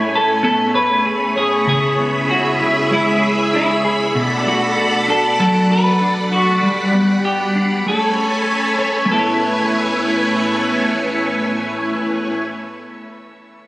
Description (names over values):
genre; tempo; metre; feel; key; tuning
dream pop; 97 BPM; 4/4; straight; A major; A4 = 440 Hz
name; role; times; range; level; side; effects
semi-hollow electric guitar; melody; 0.0-13.0 s; E4 to B4; -19 LUFS; equal; tape echo, shimmer reverb
string machine, full ensemble; sustained chords; 0.0-12.3 s; G3 to B5; -18 LUFS; equal; ensemble chorus, shimmer reverb
semi-hollow electric guitar; arpeggios; 0.0-13.1 s; B2 to C#5; -20 LUFS; equal; analog chorus, tape echo
room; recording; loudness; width
moderate plate reverb, RT60 2.8 s; recorded on a phone in the room, studio reverb, compression; -14 LUFS; side -19 dB against mid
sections
0.0-9.1 A section; 9.1-11.6 B section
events
none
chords
0.0 Amaj9; 1.7 C#m7; 4.1 Bm7; 6.6 Gmaj7; 7.9 Amaj9